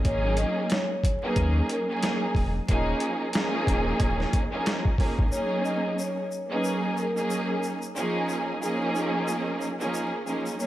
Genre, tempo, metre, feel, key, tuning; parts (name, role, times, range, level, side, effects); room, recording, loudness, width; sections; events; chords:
hip hop, boom-bap hip-hop; 91 BPM; 4/4; swing 58% on 16ths; A4 = 440 Hz
warm studio string section; accompaniment; 0.0-10.7 s; E#3 to G#4; -27 LUFS; right 1 dB; high-pass filter, low-pass filter
boom bap sampler-style drum kit; drums; 0.0-5.3 s; hi-hat, kick drum, snare drum; -26 LUFS; equal
vibraphone with soft mallets; melody; 0.1-10.7 s; A#4 to D#5; -32 LUFS; left 1 dB; high-pass filter, low-pass filter, ping-pong delay
sub bass with octave; bass; 0.1-5.3 s; D#1 to D#2; -27 LUFS; equal
egg shaker; percussion; 5.3-10.7 s; -43 LUFS; left 5 dB
light reverb; vinyl crackle; -24 LUFS; side -14 dB against mid
0.0-5.3 A section; 5.3-10.7 A section
0.0 G#9sus4; 2.7 D#9sus4; 5.3 G#9sus4; 8.0 D#9sus4